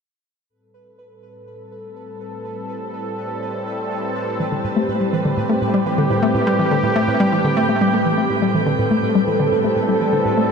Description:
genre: ambient, sequencer-driven space music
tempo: 123 BPM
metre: 4/4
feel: straight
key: A minor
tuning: A4 = 440 Hz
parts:
  - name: sweeping resonant pad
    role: sustained chords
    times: 0.5-10.5 s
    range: A2 to A4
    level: -20 LUFS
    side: equal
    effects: chorus
  - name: pulsing gated texture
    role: texture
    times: 0.5-10.5 s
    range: B4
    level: -28 LUFS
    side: right 4 dB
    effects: chorus, built-in reverb
  - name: hollow square pluck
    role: riff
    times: 4.4-10.4 s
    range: A2 to A3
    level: -19 LUFS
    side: left 1 dB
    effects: chorus, analog delay
room: wet shimmer reverb, RT60 9.2 s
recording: none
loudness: -16 LUFS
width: side -6 dB against mid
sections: 0.5-8.3 A section; 8.3-10.5 B section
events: fade-in on analog synth pad 0.5-8.3; fade-in on synth texture 0.5-8.3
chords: 0.5 Am7

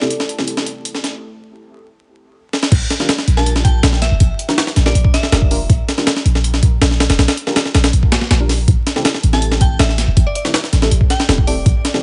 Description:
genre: drum and bass, jungle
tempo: 161 BPM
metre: 4/4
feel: straight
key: unclear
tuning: A4 = 440 Hz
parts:
  - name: glassy synth bell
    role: melody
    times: 0.0-0.1, 3.4-5.5, 9.3-12.0 s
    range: D5 to A5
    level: -28 LUFS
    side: equal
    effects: chorus, dub echo
  - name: lush unison pad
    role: sustained chords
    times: 0.0-1.2 s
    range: A3 to A4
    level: -34 LUFS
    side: equal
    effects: chorus
  - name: deep mellow chord stab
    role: stabs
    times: 0.0-12.0 s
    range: C4 to Bb4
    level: -27 LUFS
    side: equal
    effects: chorus, phaser, dub echo
  - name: breakbeat sampler-style drum kit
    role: drums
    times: 0.0-12.0 s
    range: crash cymbal, hi-hat, kick drum, snare drum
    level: -17 LUFS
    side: equal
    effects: high-pass filter on hats, high-pass filter on snare, high-pass filter on kick, high-pass filter on cymbals
  - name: warm 808-style bass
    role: bass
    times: 2.7-11.7 s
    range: E1 to Bb1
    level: -17 LUFS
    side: equal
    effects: none
room: digital ambience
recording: vinyl crackle, nothing above 10.5 kHz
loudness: -15 LUFS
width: mono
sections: 0.0-2.7 A section; 2.7-12.0 B section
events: filter sweep on analog synth pad 0.0-2.7; break 1.2-2.7; drum fill 2.5; drop 2.7-12.0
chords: 0.0 Am7; 2.7 Bb6; 8.7 Am7

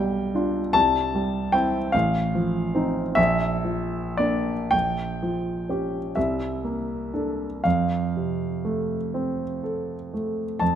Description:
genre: classical, romantic nocturne for solo piano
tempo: 35-52 BPM (dotted quarters)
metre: 12/8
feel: rubato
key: F major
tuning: A4 = 440 Hz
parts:
  - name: warm grand piano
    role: solo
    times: 0.0-10.8 s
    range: A1 to A5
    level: -22 LUFS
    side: equal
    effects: none
room: light reverb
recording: close, detailed microphones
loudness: -22 LUFS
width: side -9 dB against mid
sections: 0.0-10.6 A section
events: none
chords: 0.0 G7/B; 0.7 C; 1.9 F7/A; 3.2 Bb; 4.7 Gm7b5/Bb; 6.2 C13; 7.6 F

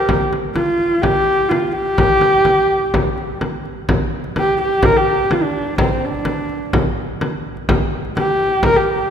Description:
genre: mongolian traditional, Mongolian folk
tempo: 126 BPM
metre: 4/4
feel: straight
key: G yu mode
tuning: A4 = 438 Hz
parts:
  - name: dark horsehead fiddle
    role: melody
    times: 0.0-9.1 s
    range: C4 to Bb4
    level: -16 LUFS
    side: equal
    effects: none
  - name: frame drum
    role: percussion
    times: 0.1-8.7 s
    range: none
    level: -19 LUFS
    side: equal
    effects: none
room: wet concert hall reverb, RT60 2.3 s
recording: minimal, uncompressed stereo recording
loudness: -15 LUFS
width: side -8 dB against mid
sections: 0.0-3.9 A section; 3.9-9.1 B section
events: none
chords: none

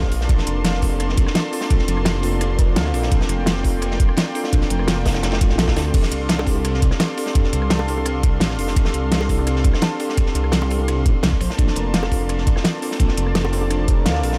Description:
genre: liquid drum and bass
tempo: 170 BPM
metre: 4/4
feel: straight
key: unclear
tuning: A4 = 445 Hz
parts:
  - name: mellow tine electric piano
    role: accompaniment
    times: 0.0-14.4 s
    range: C4 to A4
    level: -29 LUFS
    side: equal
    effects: dub echo
  - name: warm analog pad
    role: sustained chords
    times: 0.0-14.4 s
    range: Bb3 to C6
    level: -32 LUFS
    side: equal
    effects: chorus, sidechain pumping
  - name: harp-like synth pluck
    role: arpeggios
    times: 0.0-14.2 s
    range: D4 to A5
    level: -34 LUFS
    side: equal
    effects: chorus, phaser, dub echo
  - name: swelling detuned saw bass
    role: bass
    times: 0.0-14.4 s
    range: F1 to D2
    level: -25 LUFS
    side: equal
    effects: none
  - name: crunchy breakbeat drum kit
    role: drums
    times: 0.0-14.4 s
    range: ride cymbal, snare drum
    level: -31 LUFS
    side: equal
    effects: high-pass filter on cymbals, high-pass filter on snare, high-pass filter on room
  - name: electronic kick drum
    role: drums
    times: 0.0-14.0 s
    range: none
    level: -20 LUFS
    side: equal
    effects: none
  - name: pop drum kit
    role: drums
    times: 0.0-14.3 s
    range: crash cymbal, hi-hat, rim click, snare drum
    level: -26 LUFS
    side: equal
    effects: none
  - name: bongos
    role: percussion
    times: 6.4-13.7 s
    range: none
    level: -32 LUFS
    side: equal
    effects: none
room: little or no reverb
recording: none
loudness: -19 LUFS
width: mono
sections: 0.0-14.4 A section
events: none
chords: 0.1 Bbmaj9; 5.9 F6; 11.4 Bbmaj9

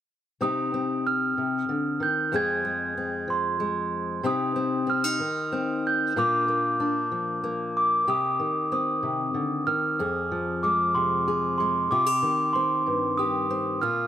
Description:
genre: folk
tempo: 63 BPM (dotted quarters)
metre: 6/8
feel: straight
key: C minor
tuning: A4 = 440 Hz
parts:
  - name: glockenspiel with rubber mallets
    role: melody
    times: 0.4-14.1 s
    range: C6 to Ab6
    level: -25 LUFS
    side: right 2 dB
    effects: none
  - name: fingerpicked steel-string acoustic guitar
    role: accompaniment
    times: 0.4-14.1 s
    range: F2 to Ab4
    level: -28 LUFS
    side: left 3 dB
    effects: none
room: light reverb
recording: none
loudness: -23 LUFS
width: side -10 dB against mid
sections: 0.4-8.1 A section; 8.1-14.1 B section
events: none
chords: 0.4 Cm; 2.3 Fm; 4.3 Cm; 6.2 Bb; 8.1 Cm; 10.0 Fm; 11.9 Cm

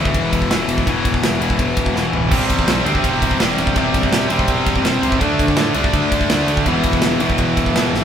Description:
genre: heavy metal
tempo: 166 BPM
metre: 4/4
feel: straight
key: E minor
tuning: A4 = 440 Hz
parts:
  - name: high-gain distorted guitar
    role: riff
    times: 0.0-8.0 s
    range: E2 to D4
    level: -23 LUFS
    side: right 2 dB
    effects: distortion
  - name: tight distorted guitar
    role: riff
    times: 0.0-8.0 s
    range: E2 to D4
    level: -20 LUFS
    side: left 6 dB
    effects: distortion
  - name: fuzz picked electric bass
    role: bass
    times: 0.0-8.0 s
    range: E1 to A2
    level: -24 LUFS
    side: equal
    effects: overdrive
  - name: modern studio drum kit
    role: drums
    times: 0.1-8.0 s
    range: crash cymbal, kick drum, ride cymbal, snare drum, toms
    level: -19 LUFS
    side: right 1 dB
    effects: none
  - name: tight distorted guitar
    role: riff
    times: 2.3-8.0 s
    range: E2 to D4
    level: -22 LUFS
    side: right 7 dB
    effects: distortion
room: moderate studio ambience, RT60 0.5 s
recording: band playing live in one room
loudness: -14 LUFS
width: side -8 dB against mid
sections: 0.0-8.0 A section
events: drum fill 1.9-2.3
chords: 0.0 E5; 2.3 C/E; 5.2 D5; 6.7 E5

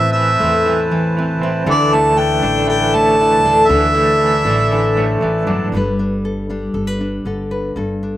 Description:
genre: acoustic folk duo or small band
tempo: 118 BPM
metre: 4/4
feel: straight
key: G major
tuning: A4 = 440 Hz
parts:
  - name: warm harmonica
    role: melody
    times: 0.0-5.2 s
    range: D5 to A5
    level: -15 LUFS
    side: right 1 dB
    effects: slapback echo
  - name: nylon-string guitar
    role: accompaniment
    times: 0.0-8.2 s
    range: G2 to B4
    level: -18 LUFS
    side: left 2 dB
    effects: slapback echo
  - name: hand-pumped harmonium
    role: sustained chords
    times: 0.0-5.7 s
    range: E4 to A5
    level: -23 LUFS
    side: equal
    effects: none
  - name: electric guitar through a small old amp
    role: arpeggios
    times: 0.0-5.8 s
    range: E3 to D4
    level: -21 LUFS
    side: right 4 dB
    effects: tremolo, slapback echo
  - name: upright bass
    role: bass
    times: 0.0-8.2 s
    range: G1 to E2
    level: -23 LUFS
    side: equal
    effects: none
room: little or no reverb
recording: recorded outdoors, with no room sound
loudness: -13 LUFS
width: side -13 dB against mid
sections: 0.0-5.7 A section; 5.7-8.2 B section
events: none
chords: 0.0 Amadd9; 1.7 Dsus2; 5.7 Gadd9

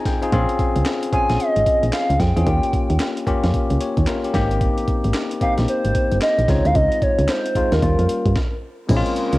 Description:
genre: R&B, new jack swing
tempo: 112 BPM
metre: 4/4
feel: swing 62% on 16ths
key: unclear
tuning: A4 = 442 Hz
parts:
  - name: bell-like tine electric piano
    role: accompaniment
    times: 0.0-9.4 s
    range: G3 to Bb5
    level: -23 LUFS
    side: left 3 dB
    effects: cassette tape
  - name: breakbeat sampler-style drum kit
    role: drums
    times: 0.1-9.4 s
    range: crash cymbal, handclaps, hi-hat, kick drum, snare drum, tambourine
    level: -23 LUFS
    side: equal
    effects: cassette tape
  - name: solid FM bass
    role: bass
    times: 0.3-9.4 s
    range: G1 to G2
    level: -19 LUFS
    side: equal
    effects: none
  - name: hollow clarinet-like synth lead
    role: melody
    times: 1.1-8.6 s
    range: Bb4 to Ab5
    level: -21 LUFS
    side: right 1 dB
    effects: chorus, cassette tape
  - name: warm studio string section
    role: sustained chords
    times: 8.9-9.4 s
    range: Db3 to Bb3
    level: -26 LUFS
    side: right 1 dB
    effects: cassette tape
room: light reverb, digital ambience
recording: home recording on cassette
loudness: -17 LUFS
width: side -18 dB against mid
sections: 0.0-8.9 A section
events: tine electric piano fill 0.0-0.3; stop 8.4-8.9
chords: 0.3 Bbm9; 2.5 Eb7; 4.3 Abmaj9; 6.5 Dbmaj9; 7.8 Eb7

